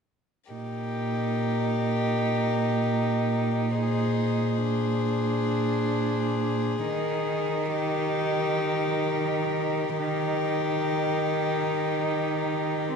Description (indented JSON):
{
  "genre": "classical, slow romantic movement for string quartet",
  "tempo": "free time",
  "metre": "none",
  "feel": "none",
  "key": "Eb major",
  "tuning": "A4 = 439 Hz",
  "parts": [
    { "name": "warm violin", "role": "melody", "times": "0.5-13.0 s", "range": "Bb4 to C5", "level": "-32 LUFS", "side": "left 13 dB", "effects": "none" },
    { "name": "warm violin", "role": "second line", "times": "0.5-13.0 s", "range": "G4 to Ab4", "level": "-30 LUFS", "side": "left 6 dB", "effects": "none" },
    { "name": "warm viola", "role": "accompaniment", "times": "0.5-13.0 s", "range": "C4 to Eb4", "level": "-31 LUFS", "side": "right 4 dB", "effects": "none" },
    { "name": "warm cello", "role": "bass", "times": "0.5-13.0 s", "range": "Bb2 to Eb3", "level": "-28 LUFS", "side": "right 4 dB", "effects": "none" }
  ],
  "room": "wet recital hall reverb, RT60 1.5 s",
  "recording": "dark, warm production",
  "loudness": "-24 LUFS",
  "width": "side -5 dB against mid",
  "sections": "0.5-13.0 A section",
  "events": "none",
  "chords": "0.5 Eb/Bb; 3.8 Bb9; 6.9 Eb"
}